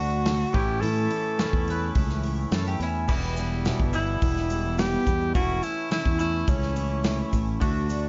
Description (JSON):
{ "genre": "folk rock and heartland rock", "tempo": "106 BPM", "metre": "4/4", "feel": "straight", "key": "unclear", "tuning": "A4 = 439 Hz", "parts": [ { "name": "breathy tenor saxophone", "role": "melody", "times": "0.0-7.3 s", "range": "C#4 to A4", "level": "-31 LUFS", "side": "equal", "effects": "none" }, { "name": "picked twelve-string acoustic guitar", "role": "accompaniment", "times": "0.0-8.1 s", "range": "E2 to F#4", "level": "-34 LUFS", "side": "equal", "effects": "analog chorus" }, { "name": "twangy electric guitar", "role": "riff", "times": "0.0-8.1 s", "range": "E2 to F#4", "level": "-36 LUFS", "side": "equal", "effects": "none" }, { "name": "modern bright fingered electric bass", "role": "bass", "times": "0.0-8.1 s", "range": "E1 to A2", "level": "-30 LUFS", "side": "equal", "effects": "none" }, { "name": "natural country drum kit", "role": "drums", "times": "0.3-8.0 s", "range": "crash cymbal, hi-hat, kick drum, snare drum", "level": "-30 LUFS", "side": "equal", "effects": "none" }, { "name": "mandolin", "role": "second line", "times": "1.7-3.1 s", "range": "C#4 to B4", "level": "-38 LUFS", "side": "equal", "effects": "digital delay" }, { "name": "tube shaker", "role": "percussion", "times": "3.1-8.0 s", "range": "none", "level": "-51 LUFS", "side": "equal", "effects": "none" } ], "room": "little or no reverb", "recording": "dark, warm production, nothing above 7.6 kHz", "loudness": "-25 LUFS", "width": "mono", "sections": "0.0-8.1 A section", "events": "none", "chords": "0.0 D; 0.5 A; 3.1 Em; 5.3 A/E", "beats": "0.26 | 0.83 1.39 1.96 2.52 | 3.09 3.65 4.22 4.78 | 5.35 5.92 6.48 7.05 | 7.61" }